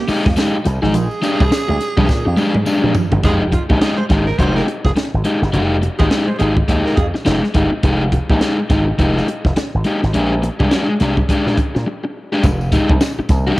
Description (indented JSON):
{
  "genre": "funk",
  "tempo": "104 BPM",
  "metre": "4/4",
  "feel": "swing 60% on 16ths",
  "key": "F dorian",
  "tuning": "A4 = 440 Hz",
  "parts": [
    { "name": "growling tenor saxophone", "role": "second line", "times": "0.0-7.1 s", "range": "F4 to C5", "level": "-25 LUFS", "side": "right 4 dB", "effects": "cassette tape, plate reverb" },
    { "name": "semi-hollow electric guitar", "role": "riff", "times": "0.0-3.1 s", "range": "F3 to Ab3", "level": "-25 LUFS", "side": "right 7 dB", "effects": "none" },
    { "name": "crunchy overdriven guitar", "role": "accompaniment", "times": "0.1-13.6 s", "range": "Ab3 to Ab4", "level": "-18 LUFS", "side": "left 1 dB", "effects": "spring reverb, cassette tape" },
    { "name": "slap bass with an envelope filter", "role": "bass", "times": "0.1-13.5 s", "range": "F1 to Bb2", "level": "-18 LUFS", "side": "equal", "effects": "tube saturation" },
    { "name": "crisp fusion drum kit", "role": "drums", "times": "0.1-13.5 s", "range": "hi-hat, kick drum, snare drum, toms", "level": "-18 LUFS", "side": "equal", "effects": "cassette tape" },
    { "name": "tambourine", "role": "percussion", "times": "0.1-3.1, 12.4-13.6 s", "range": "none", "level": "-40 LUFS", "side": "left 4 dB", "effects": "none" }
  ],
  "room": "moderate small room reverb, RT60 0.5 s",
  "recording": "home recording on cassette",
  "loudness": "-14 LUFS",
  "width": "side -18 dB against mid",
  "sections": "0.0-3.2 A section; 3.2-12.4 B section; 12.4-13.6 A section",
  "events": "drum fill 2.1-3.2; break 11.9-12.4",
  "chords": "0.0 Fm9; 0.9 Bb13; 3.2 Fm9; 10.1 Bb13; 12.4 Fm9"
}